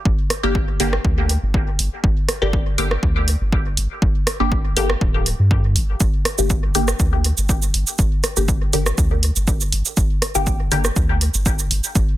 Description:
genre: dub techno.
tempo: 121 BPM.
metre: 4/4.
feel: straight.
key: G minor.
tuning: A4 = 440 Hz.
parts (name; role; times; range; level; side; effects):
soft dub sub bass; bass; 0.1-12.1 s; D1 to G2; -21 LUFS; equal; sidechain pumping.
electronic kick drum; drums; 0.1-12.1 s; none; -19 LUFS; equal; overdrive.
punchy analog drum machine; drums; 0.3-12.1 s; hi-hat, rim click, shaker; -22 LUFS; right 2 dB; overdrive.
filtered dub chord stab; stabs; 0.4-10.9 s; D3 to G4; -24 LUFS; left 2 dB; phaser, sidechain pumping, dub echo.
room: little or no reverb.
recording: dense, heavily limited modern master.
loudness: -16 LUFS.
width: side -14 dB against mid.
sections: 0.0-6.0 A section; 6.0-12.2 A section.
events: none.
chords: 0.0 Gm.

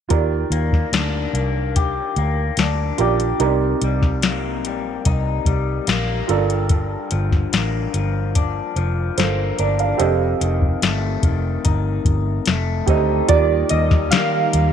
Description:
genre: indie pop, bedroom pop.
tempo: 73 BPM.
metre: 4/4.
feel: straight.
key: unclear.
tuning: A4 = 440 Hz.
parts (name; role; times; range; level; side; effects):
dark upright piano; accompaniment; 0.1-14.7 s; Eb4 to F5; -23 LUFS; right 12 dB; none.
electric guitar through a small old amp; accompaniment; 0.1-14.7 s; F2 to G4; -24 LUFS; left 9 dB; wide subtle chorus, warbly pitch drift.
vintage muted fingered electric bass; bass; 0.1-14.7 s; F1 to Eb3; -21 LUFS; equal; none.
soft vintage rhythm box; drums; 0.1-14.7 s; hi-hat, kick drum, snare drum; -20 LUFS; left 2 dB; none.
warbly lo-fi synth keys; melody; 13.3-14.7 s; D5 to F5; -19 LUFS; right 5 dB; wide subtle chorus, slapback echo.
string machine, violas; sustained chords; 13.3-14.7 s; Eb3 to G4; -27 LUFS; equal; ensemble chorus.
room: light reverb.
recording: 1960s-style stereo with parts hard left and right.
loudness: -17 LUFS.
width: side -8 dB against mid.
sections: 0.1-13.3 A section; 13.3-14.7 B section.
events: none.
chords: 0.1 Ebmaj7; 3.4 Cm7; 6.3 Gm7; 13.3 Ebmaj7.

